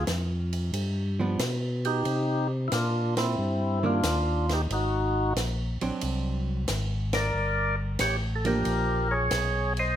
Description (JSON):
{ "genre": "soul jazz organ trio", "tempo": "91 BPM", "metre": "4/4", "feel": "swing 69% on 8ths", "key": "unclear", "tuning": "A4 = 440 Hz", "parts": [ { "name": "percussive tonewheel organ", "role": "melody", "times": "0.0-10.0 s", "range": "C4 to Eb5", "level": "-27 LUFS", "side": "equal", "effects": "slow rotary speaker" }, { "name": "tonewheel organ", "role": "bass", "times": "0.0-10.0 s", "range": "G1 to C3", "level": "-28 LUFS", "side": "equal", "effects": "overdrive" }, { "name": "compact cocktail drum kit", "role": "drums", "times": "0.1-9.9 s", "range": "hi-hat, ride cymbal, snare drum", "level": "-34 LUFS", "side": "equal", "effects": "none" }, { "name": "archtop guitar, miked and amplified", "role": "accompaniment", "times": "1.2-9.3 s", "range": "Eb3 to D4", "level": "-30 LUFS", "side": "right 4 dB", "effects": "none" } ], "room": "light reverb", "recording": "none", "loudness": "-25 LUFS", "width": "side -10 dB against mid", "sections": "0.0-10.0 A section", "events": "band accent 3.0-3.4, 7.0-7.3", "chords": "0.0 N.C.; 0.7 G7; 2.1 Cm9; 4.7 Ab7#11; 7.3 Gm7" }